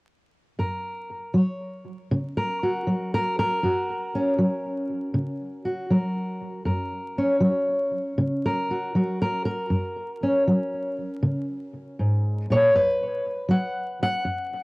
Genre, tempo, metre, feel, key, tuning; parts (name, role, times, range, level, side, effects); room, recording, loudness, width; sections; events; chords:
acoustic country blues, solo or duo; 79 BPM; 4/4; swing 68% on 8ths; F# major; A4 = 441 Hz
fingerpicked steel-string acoustic guitar; solo; 0.6-14.6 s; F#2 to F#5; -23 LUFS; equal; cassette tape, analog delay
light reverb; home recording on cassette, vinyl crackle; -22 LUFS; side -26 dB against mid
0.6-14.6 A section
0.6 F#; 12.7 B5